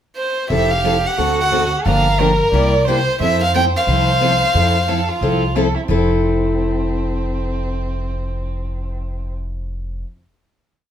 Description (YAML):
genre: acoustic string swing (jazz manouche)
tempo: 179 BPM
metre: 4/4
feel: swing 60% on 8ths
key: F major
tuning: A4 = 439 Hz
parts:
  - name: warm violin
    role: melody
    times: 0.2-5.5 s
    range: Bb4 to G5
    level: -18 LUFS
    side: equal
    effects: plate reverb
  - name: warm violin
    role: second line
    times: 0.5-9.3 s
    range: C4 to D5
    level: -23 LUFS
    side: right 4 dB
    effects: none
  - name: picked steel-string acoustic guitar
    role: accompaniment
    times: 0.5-10.1 s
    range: C3 to A4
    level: -22 LUFS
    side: left 4 dB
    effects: none
  - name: picked steel-string acoustic guitar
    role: accompaniment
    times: 0.5-10.1 s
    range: C3 to A4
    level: -25 LUFS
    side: right 4 dB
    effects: none
  - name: upright bass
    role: bass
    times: 0.5-10.0 s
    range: F1 to F2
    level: -21 LUFS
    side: equal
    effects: none
room: wet studio reverb, RT60 0.5 s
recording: heard from further back in the room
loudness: -15 LUFS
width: side -10 dB against mid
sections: 0.0-0.5 pickup bar; 0.5-5.9 A section; 5.9-8.6 final chord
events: none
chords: 0.5 Fmaj7; 1.2 D7; 1.9 Gm7; 2.5 C7; 3.2 Fmaj7